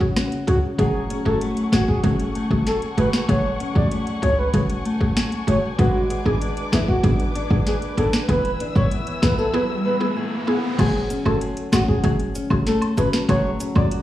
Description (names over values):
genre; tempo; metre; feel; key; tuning
dancehall; 96 BPM; 4/4; straight; F# minor; A4 = 441 Hz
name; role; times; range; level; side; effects
mallet-like synth pluck; accompaniment; 0.0-14.0 s; A3 to G#4; -26 LUFS; right 1 dB; chorus
nylon-string guitar; arpeggios; 0.0-14.0 s; C#3 to B4; -26 LUFS; left 2 dB; none
afro-pop drum kit; drums; 0.0-14.0 s; crash cymbal, hi-hat, kick drum, rim click, snare drum; -22 LUFS; equal; none
breathy flute-like synth lead; melody; 0.5-13.9 s; E4 to D5; -25 LUFS; equal; chorus, tremolo, tape echo
short 808-style bass; bass; 0.5-13.9 s; E1 to C#2; -24 LUFS; equal; none
muted studio string section; sustained chords; 0.8-10.8 s; A3 to E6; -31 LUFS; left 1 dB; sidechain pumping
riser; sound effects; 9.0-10.8 s; none; -28 LUFS; equal; none
woodblock and cabasa; percussion; 10.8-13.9 s; none; -32 LUFS; equal; none
room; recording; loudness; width
light reverb; played on a big sound system in a bare room, stone room reverb, small room ambience; -18 LUFS; side -14 dB against mid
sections
0.8-10.8 A section; 10.8-14.0 B section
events
riser 9.0-10.8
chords
0.0 C#sus4; 0.8 F#madd9; 5.8 G#dim; 8.3 E; 10.8 F#madd9